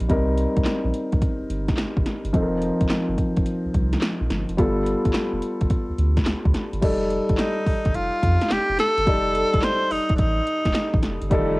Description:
R&B, new jack swing; 107 BPM; 4/4; swing 67% on 16ths; A4 = 441 Hz
dark baby grand piano; accompaniment; 0.0-11.6 s; F3 to D5; -25 LUFS; left 1 dB
round analog bass; bass; 0.0-11.6 s; F1 to F2; -25 LUFS; equal
deep house drum kit; drums; 0.0-11.5 s; crash cymbal, handclaps, hi-hat, kick drum, snare drum; -23 LUFS; equal; overdrive, cassette tape
clear tenor saxophone; melody; 7.4-11.0 s; D4 to C5; -22 LUFS; equal; cassette tape, plate reverb
warm studio string section; sustained chords; 11.3-11.6 s; Eb3 to A3; -26 LUFS; right 2 dB
light reverb; home recording on cassette; -20 LUFS; side -23 dB against mid
0.0-6.8 A section; 6.8-11.6 B section
0.0 Cm7; 2.3 F7sus4; 4.6 G9; 6.8 F13

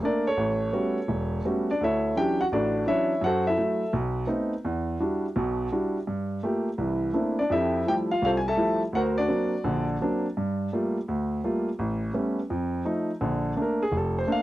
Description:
solo jazz; 168 BPM; 4/4; swing 65% on 8ths; D major; A4 = 440 Hz
warm grand piano; solo; 0.0-14.4 s; E1 to A5; -24 LUFS; equal
little or no reverb; dry, close 1970s-style studio recording; -24 LUFS; side -15 dB against mid
0.0-1.8 A section; 1.8-13.2 B section; 13.2-14.4 C section
grand piano solo 13.2-14.4
0.4 A13; 1.8 Dmaj9; 3.2 F#m7b5; 3.9 B7b9; 4.7 Em9; 6.1 Gm9; 6.8 C13; 7.5 Fmaj9; 8.9 Daug7; 10.4 Gm9; 11.8 A9; 12.5 F7; 13.2 Bbmaj7

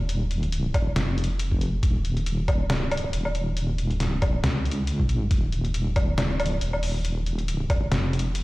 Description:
deep dubstep; 138 BPM; 4/4; swing 56% on 16ths, half-time; A4 = 440 Hz
deep soft wobble bass; bass; 0.0-8.4 s; Eb1 to Db2; -25 LUFS; equal; chorus
trip hop sampler-style drum kit; drums; 0.1-8.4 s; hi-hat, snare drum, woodblock; -29 LUFS; equal
electronic kick drum; drums; 0.7-7.8 s; -23 LUFS; equal
light reverb; played on a big sound system in a bare room, stone room reverb; -23 LUFS; side -20 dB against mid
0.0-8.4 A section

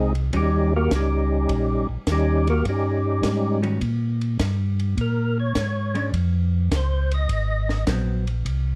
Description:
soul jazz organ trio; 103 BPM; 4/4; swing 69% on 8ths; Eb mixolydian; A4 = 440 Hz
percussive tonewheel organ; melody; 0.0-7.8 s; G3 to Eb5; -27 LUFS; equal; slow rotary speaker, overdrive, chorus vibrato
mellow tonewheel organ; bass; 0.0-8.8 s; Ab1 to Bb2; -24 LUFS; equal; slow rotary speaker
compact cocktail drum kit; drums; 0.1-8.6 s; hi-hat, kick drum, ride cymbal, snare drum; -32 LUFS; equal
vintage hollow-body jazz guitar; accompaniment; 0.3-8.2 s; Eb3 to F#4; -30 LUFS; equal
light reverb; dark, warm production; -23 LUFS; mono
0.0-8.8 A section
tonewheel organ solo 0.0-8.8
0.3 Eb7; 5.0 Bbm7; 7.3 Ab7#9

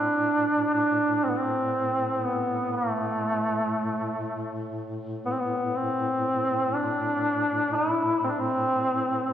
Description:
caucasian folk, Caucasian lament; 60 BPM; 3/4; rubato; A minor; A4 = 440 Hz
warm duduk; melody; 0.0-9.3 s; A3 to E4; -24 LUFS; equal
dark duduk; drone; 0.0-9.3 s; A2; -34 LUFS; left 1 dB
wet church reverb, RT60 2.9 s; recorded in a church or concert hall; -24 LUFS; side -10 dB against mid
0.0-9.3 A section

